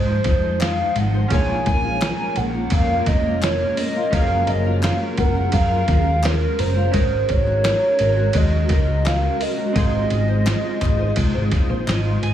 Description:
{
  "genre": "indie pop, bedroom pop",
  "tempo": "85 BPM",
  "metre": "4/4",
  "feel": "straight",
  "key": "Bb minor",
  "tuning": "A4 = 440 Hz",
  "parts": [
    { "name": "hollow clarinet-like synth lead", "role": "melody", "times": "0.0-11.9 s", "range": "Bb4 to Ab5", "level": "-23 LUFS", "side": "right 2 dB", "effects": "phaser, lush chorus, slapback echo" },
    { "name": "chorused retro synth keys", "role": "accompaniment", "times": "0.0-12.3 s", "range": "F3 to Ab5", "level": "-31 LUFS", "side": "right 4 dB", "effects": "cassette tape" },
    { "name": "fingerpicked steel-string acoustic guitar", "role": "accompaniment", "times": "0.0-12.3 s", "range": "Bb2 to Eb5", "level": "-27 LUFS", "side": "left 4 dB", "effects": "ensemble chorus, vibrato effect" },
    { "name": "granular cloud pad", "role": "sustained chords", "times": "0.0-12.3 s", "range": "F3 to Bb4", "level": "-28 LUFS", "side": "equal", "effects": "built-in reverb" },
    { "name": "hollow-body short-scale picked electric bass", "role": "bass", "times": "0.0-12.3 s", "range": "F1 to Ab2", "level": "-21 LUFS", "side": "equal", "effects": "none" },
    { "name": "lo-fi sampler-style drum kit", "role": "drums", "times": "0.2-12.3 s", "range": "hi-hat, kick drum, ride cymbal, snare drum", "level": "-23 LUFS", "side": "equal", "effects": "none" },
    { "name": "group handclap", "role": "percussion", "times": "0.6-12.0 s", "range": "none", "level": "-34 LUFS", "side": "left 4 dB", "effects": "none" }
  ],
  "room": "digital ambience",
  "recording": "heavily compressed radio sound, small room reverb",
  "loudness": "-17 LUFS",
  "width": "side -10 dB against mid",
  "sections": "0.0-12.3 A section",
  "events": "synth keys fill 11.5-12.3",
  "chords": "0.0 Fm7; 1.3 Bbm7; 4.1 Gbmaj9; 6.9 Ab9sus4; 9.8 Fm7/Ab"
}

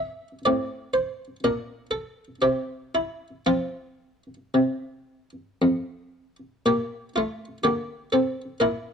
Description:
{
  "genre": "classical, baroque-style suite movement for harpsichord",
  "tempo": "55-64 BPM",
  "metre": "3/4",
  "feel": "rubato",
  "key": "F major",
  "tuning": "A4 = 440 Hz",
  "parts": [
    { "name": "buff-stop harpsichord", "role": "solo", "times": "0.0-8.9 s", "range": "F2 to E5", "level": "-22 LUFS", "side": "equal", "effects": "none" }
  ],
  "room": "light reverb",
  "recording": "worn, warbling old tape, cassette tape, warbly pitch drift",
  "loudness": "-24 LUFS",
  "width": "side -6 dB against mid",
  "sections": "0.0-6.7 A section; 6.7-8.9 A section",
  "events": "none",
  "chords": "0.5 Amadd11; 1.4 Bbmaj7; 2.4 N.C.; 3.5 F5; 6.7 Bb"
}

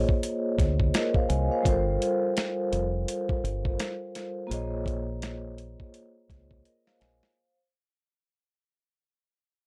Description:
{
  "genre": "hip hop, boom-bap hip-hop",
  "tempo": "84 BPM",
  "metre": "4/4",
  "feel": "swing 59% on 16ths",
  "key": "unclear",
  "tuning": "A4 = 441 Hz",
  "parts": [
    { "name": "vibraphone with soft mallets", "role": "accompaniment", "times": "0.0-7.6 s", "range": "G3 to Ab5", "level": "-31 LUFS", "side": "equal", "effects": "high-pass filter, low-pass filter" },
    { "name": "deep dub fingered electric bass", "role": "bass", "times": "0.0-7.2 s", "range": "F1 to D2", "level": "-32 LUFS", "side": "equal", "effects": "none" },
    { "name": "dusty soul sampler-style drum kit", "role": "drums", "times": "0.1-7.4 s", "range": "hi-hat, kick drum, snare drum", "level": "-30 LUFS", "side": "equal", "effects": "none" }
  ],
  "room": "little or no reverb",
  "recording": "dry, gritty hardware recording, cassette tape",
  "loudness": "-28 LUFS",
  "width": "mono",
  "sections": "0.0-1.7 A section; 1.7-7.4 B section",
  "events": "fade-out 1.7-7.4; drum fill 6.7-7.4",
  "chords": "0.0 Bbm11; 1.7 Gm11; 4.5 Bbm11"
}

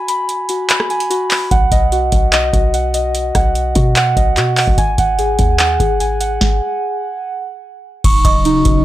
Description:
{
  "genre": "hip hop, trap",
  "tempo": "147 BPM",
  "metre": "4/4",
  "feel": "half-time",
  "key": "unclear",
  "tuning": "A4 = 440 Hz",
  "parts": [
    { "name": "muted felt-like synth keys", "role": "arpeggios", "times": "0.0-8.8 s", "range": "Eb4 to Db6", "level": "-16 LUFS", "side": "right 1 dB", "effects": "chorus, low-pass filter, tape echo" },
    { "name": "booming analog drum machine", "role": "drums", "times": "0.1-8.8 s", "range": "crash cymbal, handclaps, hi-hat, kick drum, rim click, snare drum", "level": "-15 LUFS", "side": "equal", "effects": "none" },
    { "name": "clean 808-style bass", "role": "bass", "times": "1.5-8.8 s", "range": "Eb1 to B2", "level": "-18 LUFS", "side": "equal", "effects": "none" },
    { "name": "sweeping resonant pad", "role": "sustained chords", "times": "8.0-8.8 s", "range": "Db3 to Eb4", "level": "-18 LUFS", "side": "left 3 dB", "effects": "chorus" },
    { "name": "delicate synth tine bell", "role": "second line", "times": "8.2-8.4 s", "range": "Db6", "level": "-22 LUFS", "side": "right 4 dB", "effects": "chorus, tape echo" }
  ],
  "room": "digital ambience",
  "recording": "dry, gritty hardware recording",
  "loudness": "-12 LUFS",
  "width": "side -14 dB against mid",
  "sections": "0.0-8.0 A section",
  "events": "break 0.0-1.5; stop 6.4-8.0",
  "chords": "0.0 Abm7; 1.5 B; 4.8 Ab5; 8.0 Ebm7"
}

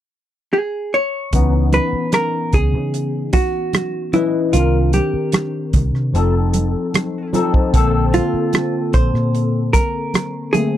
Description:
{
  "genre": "lush 1970s-style soul",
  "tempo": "75 BPM",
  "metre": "4/4",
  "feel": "straight",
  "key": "unclear",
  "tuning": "A4 = 440 Hz",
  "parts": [
    { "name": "hollow-body jazz guitar", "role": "melody", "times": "0.5-10.8 s", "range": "E4 to C#5", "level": "-20 LUFS", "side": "right 1 dB", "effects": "none" },
    { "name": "barky tine electric piano", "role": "accompaniment", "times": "1.3-10.8 s", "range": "D3 to D#5", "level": "-21 LUFS", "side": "left 4 dB", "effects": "overdrive, ensemble chorus" },
    { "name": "vintage muted fingered electric bass", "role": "bass", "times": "1.3-9.7 s", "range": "F1 to C#3", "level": "-17 LUFS", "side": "equal", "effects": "none" },
    { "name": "warm soul drum kit", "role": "drums", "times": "1.3-10.7 s", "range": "hi-hat, kick drum, rim click", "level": "-18 LUFS", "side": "equal", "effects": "none" },
    { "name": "congas", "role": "percussion", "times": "1.3-10.7 s", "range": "none", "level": "-23 LUFS", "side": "right 4 dB", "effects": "none" }
  ],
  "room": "little or no reverb",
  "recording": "none",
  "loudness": "-15 LUFS",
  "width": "side -12 dB against mid",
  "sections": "0.0-1.3 A section; 1.3-10.8 B section",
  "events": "none",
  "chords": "0.0 N.C.; 1.3 C#m9; 4.5 Cm9; 6.1 F7; 7.7 A#maj9"
}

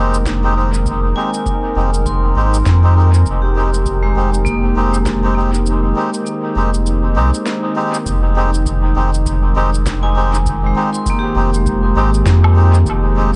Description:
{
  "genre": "ambient dub",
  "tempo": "100 BPM",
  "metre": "4/4",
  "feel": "swing 60% on 16ths",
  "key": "F minor",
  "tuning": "A4 = 438 Hz",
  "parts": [
    { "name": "warbly tape-like pad", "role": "sustained chords", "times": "0.0-13.4 s", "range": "Eb3 to Bb4", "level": "-25 LUFS", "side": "equal", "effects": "chorus, built-in reverb" },
    { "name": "vibraphone with hard mallets", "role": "arpeggios", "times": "0.0-13.4 s", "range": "Ab3 to C6", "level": "-24 LUFS", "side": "equal", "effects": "tape echo" },
    { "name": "melodica", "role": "stabs", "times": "0.0-13.3 s", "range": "Ab3 to G4", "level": "-23 LUFS", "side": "equal", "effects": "dub echo" },
    { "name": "warm sub bass", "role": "bass", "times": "0.0-13.4 s", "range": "F1 to F2", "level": "-16 LUFS", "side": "equal", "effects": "none" },
    { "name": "electronic shaker, snare drum and woodblock", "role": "drums", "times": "0.1-13.0 s", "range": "none", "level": "-31 LUFS", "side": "equal", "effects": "dub echo" },
    { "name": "electronic kick drum", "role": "drums", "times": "0.3-13.0 s", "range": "none", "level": "-26 LUFS", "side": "equal", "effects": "none" }
  ],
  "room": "light reverb, digital ambience",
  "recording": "echo-heavy mix, nothing above 11.0 kHz",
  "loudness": "-15 LUFS",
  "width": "mono",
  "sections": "0.0-8.1 A section; 8.1-13.4 B section",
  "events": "kick drops out 5.7-8.1",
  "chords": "0.0 Fm9"
}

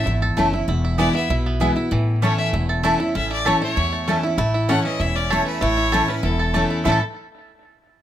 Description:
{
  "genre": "bluegrass",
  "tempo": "195 BPM",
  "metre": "4/4",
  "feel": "straight",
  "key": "A major",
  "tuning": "A4 = 440 Hz",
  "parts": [
    { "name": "bluegrass banjo", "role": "melody", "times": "0.0-7.0 s", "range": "E3 to A4", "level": "-27 LUFS", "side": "right 4 dB", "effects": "analog delay" },
    { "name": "clear fiddle", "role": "melody", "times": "0.0-7.0 s", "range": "A4 to F#5", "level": "-26 LUFS", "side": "left 2 dB", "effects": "none" },
    { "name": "picked steel-string acoustic guitar", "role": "accompaniment", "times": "0.0-7.0 s", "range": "E2 to E4", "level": "-23 LUFS", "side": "left 1 dB", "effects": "none" },
    { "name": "upright bass", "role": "bass", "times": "0.1-7.0 s", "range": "E1 to E2", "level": "-24 LUFS", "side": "equal", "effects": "none" },
    { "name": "mandolin", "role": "stabs", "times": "0.4-7.0 s", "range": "A3 to A5", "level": "-23 LUFS", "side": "equal", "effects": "none" },
    { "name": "lap resonator guitar", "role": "second line", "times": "4.4-7.0 s", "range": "C#4 to E4", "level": "-26 LUFS", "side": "equal", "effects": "none" }
  ],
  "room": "light reverb",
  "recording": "close, detailed microphones",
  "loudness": "-18 LUFS",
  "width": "side -11 dB against mid",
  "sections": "0.0-4.4 A section; 4.4-6.9 B section; 6.9-8.0 C section",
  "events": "none",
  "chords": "0.0 A; 0.7 E; 1.9 A"
}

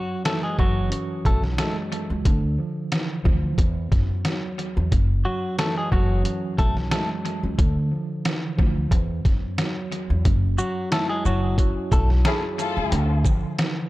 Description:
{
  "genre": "hip hop, boom-bap hip-hop",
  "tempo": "90 BPM",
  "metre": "4/4",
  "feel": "swing 54% on 16ths",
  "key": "F# minor",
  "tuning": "A4 = 440 Hz",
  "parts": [
    { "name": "clean electric guitar", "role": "melody", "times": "0.0-12.1 s", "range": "F#3 to A4", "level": "-28 LUFS", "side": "left 1 dB", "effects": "high-pass filter, low-pass filter, analog delay" },
    { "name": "mellow tine electric piano", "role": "accompaniment", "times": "0.0-13.9 s", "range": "E2 to G#4", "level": "-29 LUFS", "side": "right 1 dB", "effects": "medium stereo tremolo, cassette tape, high-pass filter, low-pass filter" },
    { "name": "trip hop sampler-style drum kit", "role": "drums", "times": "0.3-13.8 s", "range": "hi-hat, kick drum, shaker, snare drum", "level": "-23 LUFS", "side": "equal", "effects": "analog delay" },
    { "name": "upright bass", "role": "bass", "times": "0.6-13.2 s", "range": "F#1 to F#2", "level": "-23 LUFS", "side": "equal", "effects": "none" },
    { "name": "warm studio string section", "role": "stabs", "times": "12.3-13.0 s", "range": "A3 to A4", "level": "-28 LUFS", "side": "left 4 dB", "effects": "high-pass filter, low-pass filter, analog delay" }
  ],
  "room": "light reverb",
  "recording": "echo-heavy mix",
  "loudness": "-20 LUFS",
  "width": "side -18 dB against mid",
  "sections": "0.0-10.3 A section; 10.3-13.9 B section",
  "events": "none",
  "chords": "0.0 F#m11; 2.3 Dmadd9; 3.6 Esus2; 4.9 F#m9; 7.6 Dmadd9; 8.9 Esus2; 10.3 F#m9; 12.9 Dmadd9"
}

